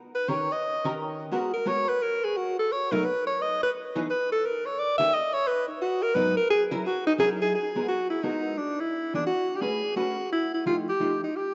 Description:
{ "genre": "jazz", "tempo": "174 BPM", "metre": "3/4", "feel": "swing 63% on 8ths", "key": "unclear", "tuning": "A4 = 440 Hz", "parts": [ { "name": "clear alto saxophone", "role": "melody", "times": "0.2-11.5 s", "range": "D4 to E5", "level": "-28 LUFS", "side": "equal", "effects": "diffuse ambient delay" }, { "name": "vintage hollow-body jazz guitar", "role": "accompaniment", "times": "0.3-11.2 s", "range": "G#2 to B4", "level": "-35 LUFS", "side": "equal", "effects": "analog chorus" } ], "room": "wet plate reverb, RT60 3.0 s", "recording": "dreamy mix soaked in reverb, nothing above 7.7 kHz", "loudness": "-27 LUFS", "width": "mono", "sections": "0.0-7.5 A section; 7.5-11.5 B section", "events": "alto saxophone solo 0.0-7.5", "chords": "0.3 D#7; 1.3 G#m9; 2.4 B7; 3.4 Emaj7; 4.4 D#7; 5.5 G#m7; 6.5 F#7; 7.5 G#m9; 8.6 E7; 9.6 Amaj9; 10.7 F9" }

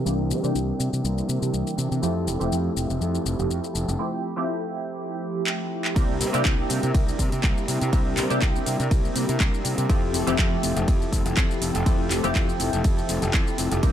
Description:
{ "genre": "filtered disco house", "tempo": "122 BPM", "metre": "4/4", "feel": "swing 54% on 16ths", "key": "F major", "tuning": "A4 = 437 Hz", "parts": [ { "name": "funky polysynth comp", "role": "accompaniment", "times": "0.0-13.9 s", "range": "E3 to G4", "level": "-27 LUFS", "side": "right 1 dB", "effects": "chorus, phaser, sidechain pumping, low-pass filter" }, { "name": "mellow electric guitar", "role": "riff", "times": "0.0-13.9 s", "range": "G3 to Bb4", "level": "-32 LUFS", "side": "left 3 dB", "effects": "sidechain pumping, low-pass filter" }, { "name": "fuzz fingered electric bass", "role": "bass", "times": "0.1-13.9 s", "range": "F1 to C3", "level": "-27 LUFS", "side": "equal", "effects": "overdrive, sidechain pumping, low-pass filter" }, { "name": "house drum kit", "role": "drums", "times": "0.1-13.9 s", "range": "handclaps, hi-hat, ride cymbal, shaker", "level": "-30 LUFS", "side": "equal", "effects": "sidechain pumping on hats, sidechain pumping on perc, sidechain pumping on cymbals" }, { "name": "electronic kick drum", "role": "drums", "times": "6.0-13.9 s", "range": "none", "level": "-22 LUFS", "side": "equal", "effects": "none" } ], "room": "digital ambience", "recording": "none", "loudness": "-21 LUFS", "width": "side -10 dB against mid", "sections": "0.0-6.0 A section; 6.0-13.9 B section", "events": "filter sweep 0.0-6.0; break 4.0-6.0; drum fill 5.5-6.0; drop 6.0-13.9", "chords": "0.0 C7; 2.0 Fmaj7; 6.0 C7; 9.9 Fmaj7" }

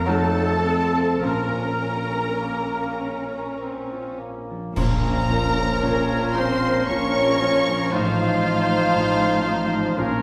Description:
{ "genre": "classical, slow romantic movement for symphony orchestra", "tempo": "50-60 BPM", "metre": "3/4", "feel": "rubato", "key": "Bb minor", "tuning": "A4 = 439 Hz", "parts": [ { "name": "warm studio violin section", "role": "melody", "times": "0.0-10.2 s", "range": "F5 to Db6", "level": "-32 LUFS", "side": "equal", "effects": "none" }, { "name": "dark studio violin section", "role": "second line", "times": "0.0-10.2 s", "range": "F4 to Bb5", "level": "-33 LUFS", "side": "equal", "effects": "none" }, { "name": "small flute group", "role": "second line", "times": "0.0-10.2 s", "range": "Bb4 to Bb5", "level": "-36 LUFS", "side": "equal", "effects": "none" }, { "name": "warm studio viola section", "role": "accompaniment", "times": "0.0-10.1 s", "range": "F3 to Bb4", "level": "-33 LUFS", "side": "equal", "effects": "none" }, { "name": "mellow French horn section", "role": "sustained chords", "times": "0.0-10.2 s", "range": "F3 to Db4", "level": "-31 LUFS", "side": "equal", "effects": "none" }, { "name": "concert harp", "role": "arpeggios", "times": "0.0-10.2 s", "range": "A2 to C6", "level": "-32 LUFS", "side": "equal", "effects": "none" }, { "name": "warm studio double bass section", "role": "bass", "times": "0.0-10.2 s", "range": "A1 to F2", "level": "-32 LUFS", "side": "equal", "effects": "none" }, { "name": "mellow clarinet", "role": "second line", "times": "0.1-10.2 s", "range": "Db4 to Eb4", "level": "-34 LUFS", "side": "equal", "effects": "none" }, { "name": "mellow oboe", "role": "second line", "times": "0.1-10.2 s", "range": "F4 to Db5", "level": "-32 LUFS", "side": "equal", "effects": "none" }, { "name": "warm bassoon", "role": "accompaniment", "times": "0.1-10.2 s", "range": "F3 to Db4", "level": "-34 LUFS", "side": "equal", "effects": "none" }, { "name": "clear studio cello section", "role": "bass", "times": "0.1-10.2 s", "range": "A2 to Db4", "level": "-32 LUFS", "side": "equal", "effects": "none" }, { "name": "dark trombone section", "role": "sustained chords", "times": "4.8-10.2 s", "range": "F3 to Eb4", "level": "-32 LUFS", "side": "equal", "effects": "none" }, { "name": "bright trumpet section", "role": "stabs", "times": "4.8-10.2 s", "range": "Bb4 to C5", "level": "-32 LUFS", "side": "equal", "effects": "none" }, { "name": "clash cymbals and concert bass drum", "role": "percussion", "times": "4.8-6.8 s", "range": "none", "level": "-31 LUFS", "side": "equal", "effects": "none" } ], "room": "wet recital hall reverb, RT60 1.6 s", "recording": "recorded in a church or concert hall", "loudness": "-22 LUFS", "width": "mono", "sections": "0.0-4.8 A section; 4.8-10.2 B section", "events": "band accent 4.8-5.8", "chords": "0.1 F7b9; 1.2 Bbm; 7.9 F7/A" }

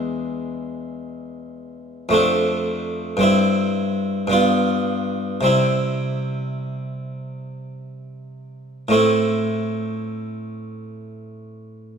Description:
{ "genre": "classical, baroque-style suite movement for harpsichord", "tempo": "51-58 BPM", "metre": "3/4", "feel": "rubato", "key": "C major", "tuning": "A4 = 440 Hz", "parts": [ { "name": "harpsichord", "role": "solo", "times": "0.0-12.0 s", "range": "E2 to F4", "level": "-20 LUFS", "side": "equal", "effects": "none" } ], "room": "moderate concert hall reverb, RT60 2.4 s", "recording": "none", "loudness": "-18 LUFS", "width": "side -6 dB against mid", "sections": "0.0-8.9 A section; 8.9-12.0 A section", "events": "none", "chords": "0.0 E7; 2.2 Dm7/F; 3.2 C/G; 4.3 G7; 5.5 C; 8.9 Am" }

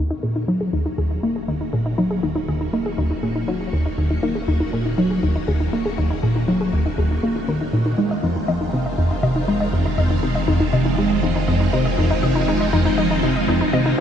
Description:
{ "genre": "ambient, sequencer-driven space music", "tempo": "120 BPM", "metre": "4/4", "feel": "straight", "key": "unclear", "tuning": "A4 = 439 Hz", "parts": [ { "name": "phased string machine", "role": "sustained chords", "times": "0.0-14.0 s", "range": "Eb3 to Gb4", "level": "-26 LUFS", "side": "equal", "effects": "ensemble chorus, phaser" }, { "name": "wide unison pluck", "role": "arpeggios", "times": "0.0-13.9 s", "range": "Eb4 to Eb5", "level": "-26 LUFS", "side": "left 3 dB", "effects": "auto-pan, ping-pong delay" }, { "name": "plucky analog bass", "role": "riff", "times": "0.0-14.0 s", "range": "Eb2 to Bb3", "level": "-20 LUFS", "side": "equal", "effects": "wide subtle chorus, ping-pong delay" }, { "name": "warm sub bass", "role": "bass", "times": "0.0-14.0 s", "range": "Eb1 to F1", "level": "-31 LUFS", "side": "equal", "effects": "tube saturation" } ], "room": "wet huge ambient reverb, RT60 8.4 s", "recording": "dark, warm production", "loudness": "-18 LUFS", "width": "side -9 dB against mid", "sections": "0.0-14.0 A section", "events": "fade-in on string machine 0.0-14.0; fade-in on sub bass 0.0-14.0; filter sweep on synth arpeggio sound 0.0-14.0", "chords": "0.0 Ebm7; 8.0 Fm7" }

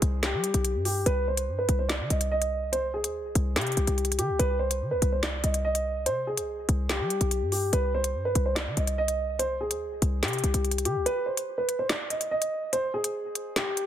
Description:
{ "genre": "hip hop, drill", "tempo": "144 BPM", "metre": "4/4", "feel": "half-time", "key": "C harmonic minor", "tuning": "A4 = 442 Hz", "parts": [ { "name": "dark concert grand piano", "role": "melody", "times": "0.0-13.9 s", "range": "G4 to Eb5", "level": "-28 LUFS", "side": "right 1 dB", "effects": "ping-pong delay" }, { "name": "short 808-style bass", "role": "bass", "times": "0.0-11.1 s", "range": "B1 to G3", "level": "-28 LUFS", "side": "equal", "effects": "none" }, { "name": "drill drum kit", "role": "drums", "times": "0.0-13.9 s", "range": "handclaps, hi-hat, snare drum", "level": "-29 LUFS", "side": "left 1 dB", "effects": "overdrive" }, { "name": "downlifter", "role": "sound effects", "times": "0.0-1.1 s", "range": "none", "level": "barely audible", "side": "none", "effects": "none" } ], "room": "light reverb", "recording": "dense, heavily limited modern master", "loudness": "-25 LUFS", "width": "side -10 dB against mid", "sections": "0.0-13.9 A section", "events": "kick muted 11.1-13.9", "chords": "0.0 C5; 11.1 N.C." }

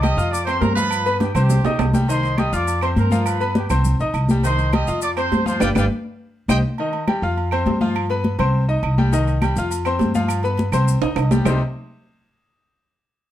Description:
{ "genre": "latin, salsa", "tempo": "205 BPM", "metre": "4/4", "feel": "straight", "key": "C minor", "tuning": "A4 = 440 Hz", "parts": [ { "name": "clear trumpet section", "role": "melody", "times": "0.0-6.6 s", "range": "G4 to Eb6", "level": "-24 LUFS", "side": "right 2 dB", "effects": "none" }, { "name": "bright grand piano", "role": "accompaniment", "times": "0.0-11.6 s", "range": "C3 to F6", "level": "-24 LUFS", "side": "left 3 dB", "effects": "none" }, { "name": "upright bass", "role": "bass", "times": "0.0-11.6 s", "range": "G1 to G2", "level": "-20 LUFS", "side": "equal", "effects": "none" }, { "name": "agogo bells and timbales", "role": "percussion", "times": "0.0-11.5 s", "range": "none", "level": "-27 LUFS", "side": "right 7 dB", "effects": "none" }, { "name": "claves", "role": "percussion", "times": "0.0-11.5 s", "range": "none", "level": "-35 LUFS", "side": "right 7 dB", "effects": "none" }, { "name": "congas", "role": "percussion", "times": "0.0-11.5 s", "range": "none", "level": "-23 LUFS", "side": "left 2 dB", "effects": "none" }, { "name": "maracas", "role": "percussion", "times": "0.0-6.6, 9.1-11.5 s", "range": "none", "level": "-37 LUFS", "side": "left 8 dB", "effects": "none" } ], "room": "light reverb", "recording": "none", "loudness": "-17 LUFS", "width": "side -12 dB against mid", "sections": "0.0-6.8 A section; 6.8-11.5 B section; 11.5-12.6 C section", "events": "drum fill 1.2-2.1, 11.0-11.5; band accent 5.6-6.8", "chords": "0.3 F5; 0.9 G7; 1.5 Cm; 2.7 F5; 3.3 G7; 3.8 Cm; 5.0 F5; 5.6 G; 6.2 Cm; 6.8 Ebadd9; 7.4 F5; 8.0 G7; 8.5 Cm; 9.7 F5; 10.3 G7; 10.9 Cm; 11.5 C5" }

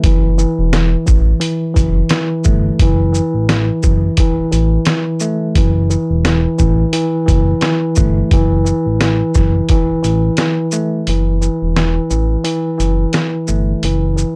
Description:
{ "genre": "hip hop, boom-bap hip-hop", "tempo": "87 BPM", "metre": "4/4", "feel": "swing 58% on 16ths", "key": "F# minor", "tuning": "A4 = 436 Hz", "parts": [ { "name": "tine electric piano", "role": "accompaniment", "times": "0.0-14.4 s", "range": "E3 to A3", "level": "-19 LUFS", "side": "equal", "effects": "none" }, { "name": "smooth synth bass", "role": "bass", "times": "0.0-14.2 s", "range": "E1 to A1", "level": "-18 LUFS", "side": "equal", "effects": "none" }, { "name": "trip hop sampler-style drum kit", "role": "drums", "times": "0.0-14.4 s", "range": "hi-hat, kick drum, shaker, snare drum", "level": "-18 LUFS", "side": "equal", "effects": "none" } ], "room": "light reverb", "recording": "dark, warm production", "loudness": "-15 LUFS", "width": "mono", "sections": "0.0-11.1 A section; 11.1-14.4 A section", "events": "break 11.1-14.4", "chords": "0.0 F#m7" }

